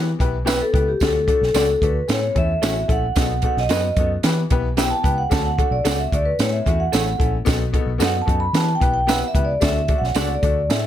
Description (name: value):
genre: uptempo 1960s-style soul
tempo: 111 BPM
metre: 4/4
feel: straight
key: D major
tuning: A4 = 437 Hz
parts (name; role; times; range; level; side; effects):
- bright upright piano; accompaniment; 0.0-10.9 s; A2 to B4; -26 LUFS; left 9 dB; none
- vintage muted fingered electric bass; bass; 0.0-10.9 s; A1 to E3; -24 LUFS; equal; none
- compact cocktail drum kit; drums; 0.2-10.8 s; hi-hat, kick drum, snare drum; -21 LUFS; right 1 dB; none
- vibraphone with medium mallets; melody; 0.5-10.9 s; G4 to B5; -22 LUFS; equal; none
- electric guitar through a small old amp; stabs; 0.5-10.3 s; F#4 to F#5; -29 LUFS; right 6 dB; none
- tambourine; percussion; 0.5-10.8 s; none; -33 LUFS; right 10 dB; none
room: light reverb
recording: none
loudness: -17 LUFS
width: side -11 dB against mid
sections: 0.0-10.9 A section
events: vibraphone solo 0.0-10.9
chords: 0.0 Em; 1.0 D; 2.1 A; 3.2 B7; 4.2 Em; 5.3 D; 6.4 A; 7.5 B7; 8.6 Em; 9.6 D